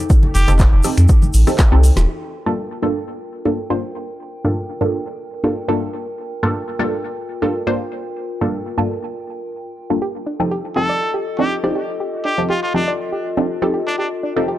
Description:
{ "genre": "deep house", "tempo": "121 BPM", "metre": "4/4", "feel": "swing 53% on 16ths", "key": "G minor", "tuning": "A4 = 444 Hz", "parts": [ { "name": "warbly tape-like pad", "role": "texture", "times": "0.0-14.6 s", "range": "Eb4 to G5", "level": "-28 LUFS", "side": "left 2 dB", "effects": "chorus, built-in reverb, sidechain pumping" }, { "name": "deep house drum kit", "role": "drums", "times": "0.1-2.1 s", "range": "finger snaps, handclaps, hi-hat, snare drum", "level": "-26 LUFS", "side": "equal", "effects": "none" }, { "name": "electronic kick drum", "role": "drums", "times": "0.1-1.7 s", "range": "none", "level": "-12 LUFS", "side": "equal", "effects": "none" }, { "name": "egg shaker", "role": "percussion", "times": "0.1-2.1 s", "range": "none", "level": "-30 LUFS", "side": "equal", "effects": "none" }, { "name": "congas", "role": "percussion", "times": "0.2-2.1 s", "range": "none", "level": "-27 LUFS", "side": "left 1 dB", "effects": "none" }, { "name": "trumpet with straight mute", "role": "melody", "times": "0.3-0.5, 10.8-14.1 s", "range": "D4 to A4", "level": "-23 LUFS", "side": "equal", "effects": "analog delay" }, { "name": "warm sub bass", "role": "bass", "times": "0.3-2.1 s", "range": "Eb1 to F2", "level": "-12 LUFS", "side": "equal", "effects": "sidechain pumping" }, { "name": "filtered dub chord stab", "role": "stabs", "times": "0.5-14.6 s", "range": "G2 to D5", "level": "-21 LUFS", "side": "equal", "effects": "phaser, tape echo" }, { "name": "soft round pluck", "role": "arpeggios", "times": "10.0-14.5 s", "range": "D4 to D5", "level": "-25 LUFS", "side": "right 2 dB", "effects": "chorus, cassette tape, sidechain pumping, analog delay" } ], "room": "little or no reverb", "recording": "dry, gritty hardware recording, transformer saturation", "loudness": "-16 LUFS", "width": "side -14 dB against mid", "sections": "0.0-2.1 A section; 2.1-14.6 B section", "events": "drum fill 1.6-2.1; band accent 2.0", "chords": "0.0 F9; 2.1 Gm9; 10.0 F9" }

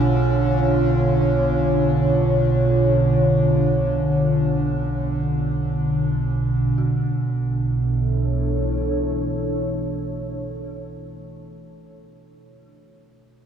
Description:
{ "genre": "dark ambient drone", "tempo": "free time", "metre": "none", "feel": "none", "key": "B minor", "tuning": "A4 = 439 Hz", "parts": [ { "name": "deep dark ambient pad", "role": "sustained chords", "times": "0.0-11.1 s", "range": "B2 to C#5", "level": "-22 LUFS", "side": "equal", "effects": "chorus, built-in reverb" }, { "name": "dark detuned synth bell", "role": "arpeggios", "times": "0.0-13.5 s", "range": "C#4 to F#4", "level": "-48 LUFS", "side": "right 3 dB", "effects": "none" }, { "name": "deep rumbling drone", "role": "drone", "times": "0.0-10.3 s", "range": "B1 to B2", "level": "-22 LUFS", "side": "right 2 dB", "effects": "built-in reverb" }, { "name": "metallic inharmonic drone", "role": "texture", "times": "0.0-6.8 s", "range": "D3", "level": "-28 LUFS", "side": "left 1 dB", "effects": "chorus, built-in reverb" } ], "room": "wet cathedral reverb, RT60 6.5 s", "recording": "studio reverb", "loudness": "-18 LUFS", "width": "side -8 dB against mid", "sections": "0.0-6.8 A section; 6.8-11.9 B section", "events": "none", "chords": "0.0 Dm; 6.8 Bm9" }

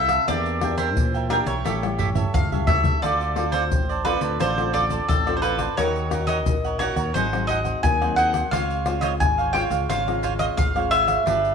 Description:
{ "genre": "samba and choro", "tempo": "87 BPM", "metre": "4/4", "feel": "straight", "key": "unclear", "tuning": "A4 = 445 Hz", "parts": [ { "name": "mandolin", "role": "melody", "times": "0.0-11.5 s", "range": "A4 to Ab5", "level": "-24 LUFS", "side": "equal", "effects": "none" }, { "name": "cavaquinho", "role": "accompaniment", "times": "0.0-11.5 s", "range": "D4 to G5", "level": "-27 LUFS", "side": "right 10 dB", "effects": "none" }, { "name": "nylon-string guitar", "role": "accompaniment", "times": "0.0-11.5 s", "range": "Ab2 to B4", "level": "-30 LUFS", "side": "left 8 dB", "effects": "none" }, { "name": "modern bright picked electric bass", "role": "bass", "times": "0.0-11.5 s", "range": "G1 to Bb2", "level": "-28 LUFS", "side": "right 1 dB", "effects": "none" }, { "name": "egg shaker, surdo, pandeiro and tamborim", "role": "percussion", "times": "0.1-11.5 s", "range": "none", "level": "-26 LUFS", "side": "left 2 dB", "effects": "none" } ], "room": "moderate echo chamber reverb, RT60 1.6 s", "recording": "1960s-style stereo with parts hard left and right", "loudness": "-20 LUFS", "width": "side -6 dB against mid", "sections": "0.0-11.5 A section", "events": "drum fill 1.7-3.0", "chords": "0.3 Em7b5; 1.7 A7; 3.0 Dm7; 5.8 Ebm7; 7.2 Ab7; 8.5 Dbmaj7" }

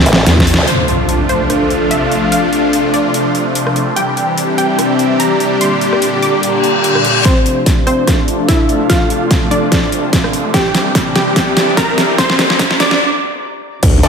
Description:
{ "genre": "heavy wobble dubstep", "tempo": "146 BPM", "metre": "4/4", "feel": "swing 55% on 16ths, half-time", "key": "D minor", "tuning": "A4 = 439 Hz", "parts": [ { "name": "supersaw chords", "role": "sustained chords", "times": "0.0-14.1 s", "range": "Bb2 to G4", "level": "-17 LUFS", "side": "equal", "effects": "phaser, sidechain pumping, low-pass filter" }, { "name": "growl bass", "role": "bass", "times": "0.0-0.6, 13.8-14.0 s", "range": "D2 to E2", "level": "-12 LUFS", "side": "equal", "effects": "chorus, overdrive" }, { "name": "formant-sweep wobble bass", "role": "bass", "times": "0.1-0.7, 14.0-14.1 s", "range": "A1 to D2", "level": "-12 LUFS", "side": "equal", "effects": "chorus, overdrive" }, { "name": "dubstep drum kit", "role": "drums", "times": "0.1-14.1 s", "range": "crash cymbal, hi-hat, rim click, snare drum", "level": "-16 LUFS", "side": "equal", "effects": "overdrive" }, { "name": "electronic kick drum", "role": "drums", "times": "0.4-0.5, 7.3-13.9 s", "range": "none", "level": "-15 LUFS", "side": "equal", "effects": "none" }, { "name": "wide unison pluck", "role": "melody", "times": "0.7-13.1 s", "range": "C4 to D6", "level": "-19 LUFS", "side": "equal", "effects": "diffuse ambient delay" }, { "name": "impact, reverse cymbal and riser", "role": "sound effects", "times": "0.7-2.3, 6.6-14.1 s", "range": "none", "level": "-19 LUFS", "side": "equal", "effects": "none" }, { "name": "airy breathy pad", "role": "texture", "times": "1.1-14.1 s", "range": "C4 to Bb5", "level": "-18 LUFS", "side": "left 2 dB", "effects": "chorus, sidechain pumping" }, { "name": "orchestra-hit-like synth stab", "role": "stabs", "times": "14.0-14.1 s", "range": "none", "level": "barely audible", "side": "none", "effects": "none" } ], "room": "wet lush hall reverb, RT60 2.0 s", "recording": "dreamy mix soaked in reverb, high-pass filter", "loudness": "-10 LUFS", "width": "side -6 dB against mid", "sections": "0.7-7.3 A section; 7.3-13.8 B section", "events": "drum fill 0.0-0.7, 7.3-13.0; band accent 0.5; impact 0.7-2.3, 13.8; reverse cymbal 6.6-7.3; build-up 7.3-13.8; riser 7.3-13.0; filter sweep on supersaw synth 7.3-13.8; filter sweep 7.3-13.8; break 13.0-13.8", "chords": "0.0 D5; 0.7 Dm7; 4.0 Cadd9; 5.6 Gm; 7.3 Dm7; 10.5 Cadd9; 12.2 Gm" }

